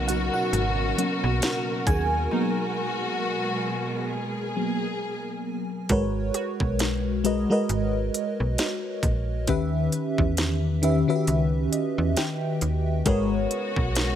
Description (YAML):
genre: contemporary R&B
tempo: 67 BPM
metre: 4/4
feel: swing 58% on 16ths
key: G# minor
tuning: A4 = 438 Hz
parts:
  - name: FM electric piano with soft pad layer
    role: accompaniment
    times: 0.0-14.2 s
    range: D#3 to G#5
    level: -26 LUFS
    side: left 1 dB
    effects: chorus, tremolo
  - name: warm studio string section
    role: sustained chords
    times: 0.0-5.9, 13.1-14.2 s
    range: B2 to A#4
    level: -29 LUFS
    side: left 1 dB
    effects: none
  - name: slap-like FM bass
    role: bass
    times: 0.0-14.2 s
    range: G#1 to E2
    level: -27 LUFS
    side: equal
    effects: none
  - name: trap drum kit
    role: drums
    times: 0.1-14.2 s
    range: hi-hat, kick drum, snare drum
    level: -27 LUFS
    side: equal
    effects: none
  - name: glassy wavetable pluck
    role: texture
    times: 2.3-14.2 s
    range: D#4 to B4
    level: -40 LUFS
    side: right 1 dB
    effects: chorus, digital delay
room: digital ambience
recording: none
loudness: -23 LUFS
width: side -10 dB against mid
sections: 0.0-5.9 A section; 5.9-14.2 A section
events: FM electric piano solo 0.0-5.9; break 2.3-5.9; FM electric piano fill 11.3-13.1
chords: 0.0 G#m11; 2.3 G#m9; 5.9 G#m11; 9.5 D#7b9b13; 13.1 G#m11